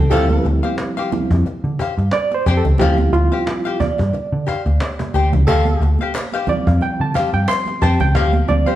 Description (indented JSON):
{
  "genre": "funk",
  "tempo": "90 BPM",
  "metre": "4/4",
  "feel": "swing 56% on 16ths",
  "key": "D minor",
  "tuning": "A4 = 439 Hz",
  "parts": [
    { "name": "barky reed electric piano", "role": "stabs", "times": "0.0-8.8 s", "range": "E3 to C6", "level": "-20 LUFS", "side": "right 3 dB", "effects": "overdrive, fast tremolo" },
    { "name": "vintage muted picked electric bass", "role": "bass", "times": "0.0-8.6 s", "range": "C#2 to D3", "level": "-16 LUFS", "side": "equal", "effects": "none" },
    { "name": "breathy tenor saxophone", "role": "second line", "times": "0.1-0.6, 5.5-5.9 s", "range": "A4", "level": "-22 LUFS", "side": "right 4 dB", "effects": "none" },
    { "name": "archtop guitar, miked and amplified", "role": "accompaniment", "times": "0.1-8.8 s", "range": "G4 to G5", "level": "-23 LUFS", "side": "left 6 dB", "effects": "wah" },
    { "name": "cajon", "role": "drums", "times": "0.1-8.8 s", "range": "none", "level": "-27 LUFS", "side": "equal", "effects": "none" },
    { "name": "congas", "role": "percussion", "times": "0.1-8.8 s", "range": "none", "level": "-27 LUFS", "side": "right 4 dB", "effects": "none" },
    { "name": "group handclap", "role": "percussion", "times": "6.1-7.7 s", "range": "none", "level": "-35 LUFS", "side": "left 3 dB", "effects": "none" }
  ],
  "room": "wet large studio reverb, RT60 1.3 s",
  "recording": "band playing live in one room, cassette tape",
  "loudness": "-15 LUFS",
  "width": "side -13 dB against mid",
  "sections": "0.0-8.8 A section",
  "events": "reed electric piano solo 0.0-8.8",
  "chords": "0.0 Dm11"
}